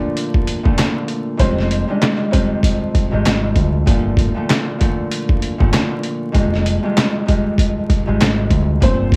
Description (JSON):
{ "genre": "hip hop, boom-bap hip-hop", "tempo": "97 BPM", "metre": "4/4", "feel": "swing 58% on 16ths", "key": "unclear", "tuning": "A4 = 440 Hz", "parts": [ { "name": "dark upright piano", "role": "melody", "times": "0.0-3.2, 8.8-9.2 s", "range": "C4 to D5", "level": "-27 LUFS", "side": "equal", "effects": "cassette tape" }, { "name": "Celtic harp", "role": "accompaniment", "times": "0.0-9.2 s", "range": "F2 to A3", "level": "-22 LUFS", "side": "equal", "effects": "none" }, { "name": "trip hop sampler-style drum kit", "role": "drums", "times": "0.2-9.2 s", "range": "handclaps, hi-hat, kick drum, snare drum", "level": "-19 LUFS", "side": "equal", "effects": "none" }, { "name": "deep dub picked electric bass", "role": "bass", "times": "1.4-9.2 s", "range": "F1 to D2", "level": "-21 LUFS", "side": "equal", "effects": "none" } ], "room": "light reverb", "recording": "home recording on cassette, vinyl crackle", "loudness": "-17 LUFS", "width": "mono", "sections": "0.0-9.2 A section", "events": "break 0.0-1.4", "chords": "0.0 Bbmaj7; 1.4 Fm9; 3.9 Gm9; 6.3 Fm9" }